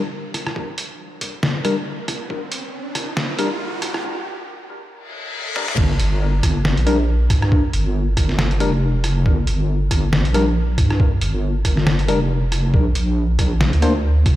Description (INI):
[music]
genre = deep dubstep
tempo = 138 BPM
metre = 4/4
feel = swing 57% on 16ths, half-time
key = G minor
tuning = A4 = 444 Hz
[part]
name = riser and reverse cymbal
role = sound effects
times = 1.8-5.8 s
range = none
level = -30 LUFS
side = equal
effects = none
[part]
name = trip hop sampler-style drum kit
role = drums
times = 0.3-14.4 s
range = crash cymbal, hi-hat, rim click, snare drum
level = -24 LUFS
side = equal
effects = none
[part]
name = electronic kick drum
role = drums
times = 0.6-3.1, 5.8-14.4 s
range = none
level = -19 LUFS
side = equal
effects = high-pass filter on kick, high-pass filter on room
[part]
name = percussive organ stab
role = stabs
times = 1.6-13.9 s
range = G3 to C5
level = -26 LUFS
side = left 2 dB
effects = chorus, dub echo
[part]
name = deep soft wobble bass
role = bass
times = 5.8-14.4 s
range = F1 to G2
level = -18 LUFS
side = equal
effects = chorus
[sound]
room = light reverb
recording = played on a big sound system in a bare room, large studio reverb, high-pass filter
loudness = -17 LUFS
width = side -15 dB against mid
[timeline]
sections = 0.0-5.8 A section; 5.8-14.4 B section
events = build-up 0.0-5.8; filter sweep on synth stab 0.0-5.8; riser 1.8-4.0; break 4.0-5.8; reverse cymbal 5.1-5.8; drum fill 5.6; drop 5.8-14.4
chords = 0.0 Gm; 12.7 Bbadd9